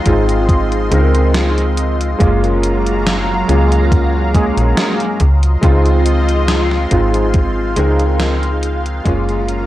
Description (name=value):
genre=vaporwave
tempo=70 BPM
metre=4/4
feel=swing 54% on 16ths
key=Db major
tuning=A4 = 440 Hz
part: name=warm electric grand piano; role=accompaniment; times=0.0-9.7 s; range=Ab3 to Bb4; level=-17 LUFS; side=equal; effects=ensemble chorus, analog delay
part: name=lush unison pad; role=sustained chords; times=0.0-9.7 s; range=Gb3 to C6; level=-22 LUFS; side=equal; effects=chorus, phaser
part: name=slap-like FM bass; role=bass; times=0.1-9.7 s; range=Gb1 to Db2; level=-15 LUFS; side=equal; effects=none
part: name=electronic kick drum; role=drums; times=0.1-9.2 s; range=none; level=-14 LUFS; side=equal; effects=none
part: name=gated 80s digital drum machine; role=drums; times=0.1-9.7 s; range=hi-hat, snare drum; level=-21 LUFS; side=equal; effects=gated reverb, gated reverb snare
room=digital ambience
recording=dry, gritty hardware recording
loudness=-12 LUFS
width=side -14 dB against mid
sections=0.0-9.7 A section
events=fade-out 6.8-9.7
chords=0.0 Dbmaj9; 2.2 Gbmaj7; 5.2 Dbmaj9; 9.1 Gbmaj7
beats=0.49 1.34 | 2.20 3.06 3.92 4.77 | 5.63 6.49 7.34 8.20 | 9.06